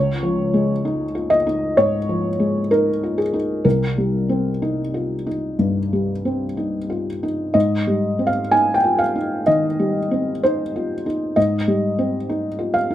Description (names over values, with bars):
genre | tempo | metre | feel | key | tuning
neoclassical minimalist piano | 60-67 BPM | 4/4 | rubato | Ab major | A4 = 440 Hz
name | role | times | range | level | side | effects
felt-muted upright piano | solo | 0.0-12.9 s | C2 to Ab5 | -18 LUFS | equal | none
room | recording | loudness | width
light reverb | none | -18 LUFS | side -12 dB against mid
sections
0.0-12.9 A section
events
none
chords
0.0 Dbadd9; 3.7 Cm7; 7.5 Abmaj7